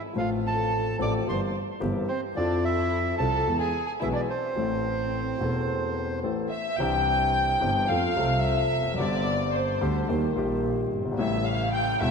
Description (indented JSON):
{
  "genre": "tango",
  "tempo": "109 BPM",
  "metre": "4/4",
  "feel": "rubato",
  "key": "A minor, C major from 6.8 s",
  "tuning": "A4 = 441 Hz",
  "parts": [
    { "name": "bandoneon", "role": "melody", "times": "0.0-6.2 s", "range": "C5 to D6", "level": "-31 LUFS", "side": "right 3 dB", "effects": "diffuse ambient delay" },
    { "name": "warm studio violin section", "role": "second line", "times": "0.0-12.1 s", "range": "C4 to G5", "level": "-29 LUFS", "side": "left 1 dB", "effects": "diffuse ambient delay" },
    { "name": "warm grand piano", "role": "accompaniment", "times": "0.1-12.1 s", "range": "E1 to A4", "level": "-28 LUFS", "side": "left 3 dB", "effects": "none" },
    { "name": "dark double bass", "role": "bass", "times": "0.2-12.1 s", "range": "E1 to F2", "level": "-31 LUFS", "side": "right 4 dB", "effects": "none" }
  ],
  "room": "wet lush hall reverb, RT60 1.9 s",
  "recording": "dreamy mix soaked in reverb",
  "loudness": "-24 LUFS",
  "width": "side -5 dB against mid",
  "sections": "0.0-6.8 A section; 6.8-12.1 B section",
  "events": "violin section solo 6.8-12.1",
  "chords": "0.2 F/A; 1.3 C7/G; 2.4 Fmaj7; 3.5 E; 4.6 Am; 6.8 Cadd9; 7.9 F; 9.0 Gsus4; 10.1 Eb; 11.2 A7",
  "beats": "| 0.16 0.71 1.26 1.81 | 2.36 2.91 3.46 4.01 | 4.56 5.12 5.67 6.23 | 6.79 7.34 7.89 8.44 | 8.99 9.54 10.10 10.65 | 11.20 11.75"
}